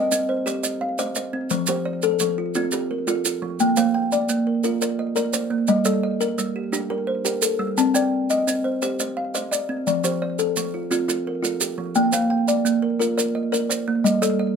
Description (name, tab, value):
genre	southern african traditional, mbira-style interlocking cycle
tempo	115 BPM (dotted quarters)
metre	12/8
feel	straight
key	unclear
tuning	A4 = 440 Hz
part	kalimba	arpeggios	0.0-14.6 s	F3 to A5	-23 LUFS	left 3 dB	slapback echo
part	kalimba	arpeggios	0.0-14.6 s	F3 to A5	-24 LUFS	right 4 dB	slapback echo
part	maracas	percussion	0.1-14.4 s	none	-26 LUFS	right 6 dB	none
room	moderate small room reverb, RT60 0.5 s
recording	none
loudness	-20 LUFS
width	side -6 dB against mid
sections	0.0-3.6 A section; 3.6-14.6 B section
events	none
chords	0.0 Cm; 1.5 F; 5.7 Gm; 7.8 Cm; 9.9 F; 14.0 Gm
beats	0.47 0.99 | 1.51 2.03 2.55 3.08 | 3.60 4.12 4.64 5.16 | 5.69 6.21 6.73 7.25 | 7.78 8.30 8.82 9.34 | 9.87 10.39 10.91 11.43 | 11.96 12.48 13.00 13.53 | 14.05